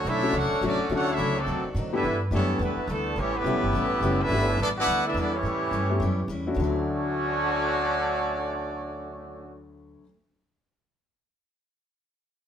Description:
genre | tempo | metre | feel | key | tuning
jazz | 212 BPM | 4/4 | swing 60% on 8ths | D major | A4 = 439 Hz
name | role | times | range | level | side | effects
clear trumpet section | melody | 0.0-9.6 s | A3 to F#5 | -29 LUFS | equal | none
muted trombone section | second line | 0.0-9.6 s | D3 to F#4 | -29 LUFS | right 2 dB | none
warm saxophone section | sustained chords | 0.0-2.0 s | D3 to C#5 | -36 LUFS | left 1 dB | none
upright bass | bass | 0.0-9.9 s | F#1 to A2 | -30 LUFS | equal | none
picked steel-string acoustic guitar | accompaniment | 0.1-10.1 s | A2 to A4 | -36 LUFS | left 2 dB | none
clear baby grand piano | accompaniment | 0.2-10.0 s | D2 to G4 | -30 LUFS | left 4 dB | none
room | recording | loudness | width
wet stone room reverb, RT60 1.0 s | band playing live in one room | -23 LUFS | side -8 dB against mid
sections
0.0-2.0 A section; 2.0-6.6 B section; 6.6-8.8 C section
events
none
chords
0.0 Dmaj7; 1.5 D7b9; 2.0 G69; 3.2 A7; 4.3 G69; 5.4 A7; 6.6 Dmaj7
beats
0.05 0.34 0.62 | 0.90 1.18 1.47 1.75 | 2.03 2.32 2.60 2.88 | 3.17 3.45 3.73 4.02 | 4.30 4.58 4.87 5.15 | 5.44 5.72 6.00 6.29 | 6.57 6.85 7.14 7.42 | 7.71 7.99 8.27 8.56

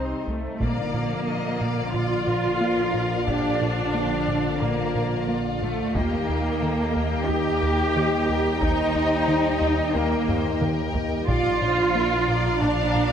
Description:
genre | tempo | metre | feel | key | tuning
cinematic, hybrid orchestral and electronic film score | 90 BPM | 4/4 | straight | unclear | A4 = 444 Hz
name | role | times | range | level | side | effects
warm symphonic violin section | melody | 0.0-13.1 s | F4 to F5 | -34 LUFS | left 6 dB | none
warm symphonic viola section | accompaniment | 0.0-13.1 s | A3 to G4 | -31 LUFS | right 1 dB | none
chorused pulse-width pad | sustained chords | 0.0-13.1 s | Bb2 to Bb5 | -31 LUFS | left 1 dB | none
rubbery square bass | riff | 0.0-13.1 s | C2 to Bb3 | -29 LUFS | right 1 dB | none
warm symphonic cello section | bass | 0.0-13.1 s | C3 to G4 | -26 LUFS | right 2 dB | none
rich symphonic violin section | second line | 0.6-13.1 s | D5 to G5 | -31 LUFS | left 2 dB | none
dark French horn section | sustained chords | 0.6-13.1 s | D3 to Eb4 | -32 LUFS | left 4 dB | none
warm symphonic double bass section | bass | 0.6-13.1 s | Bb1 to Eb2 | -31 LUFS | right 2 dB | none
taiko ensemble | drums | 0.6-11.9 s | none | -31 LUFS | equal | none
room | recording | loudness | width
moderate concert hall reverb, RT60 2.3 s | none | -21 LUFS | side -8 dB against mid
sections
0.6-13.1 A section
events
drum fill 10.3-11.3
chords
0.0 Cm; 0.6 Bb; 6.0 Eb; 11.3 Bb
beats
| 0.62 1.28 1.95 2.62 | 3.28 3.95 4.62 5.28 | 5.95 6.62 7.28 7.95 | 8.62 9.28 9.95 10.62 | 11.28 11.95 12.62

